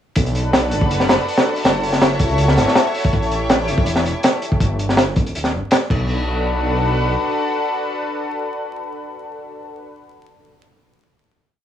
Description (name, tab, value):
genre	drum and bass, jungle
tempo	162 BPM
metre	4/4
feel	straight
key	B minor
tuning	A4 = 445 Hz
part	lush unison pad	sustained chords	0.2-9.8 s	D4 to C#5	-22 LUFS	left 1 dB	chorus, vintage 12-bit sampler grit, cassette tape
part	detuned saw bass	bass	0.2-7.2 s	D1 to C#2	-21 LUFS	equal	none
part	crunchy breakbeat drum kit	drums	0.2-6.0 s	crash cymbal, hi-hat, kick drum, snare drum	-17 LUFS	equal	cassette tape
room	light reverb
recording	home recording on cassette, vinyl crackle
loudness	-16 LUFS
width	side -10 dB against mid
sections	0.2-6.1 drop; 6.1-9.1 final hit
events	drop 0.2-6.1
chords	0.2 Bm7; 1.6 F#m7; 3.1 A7; 4.6 G5; 5.9 Bm7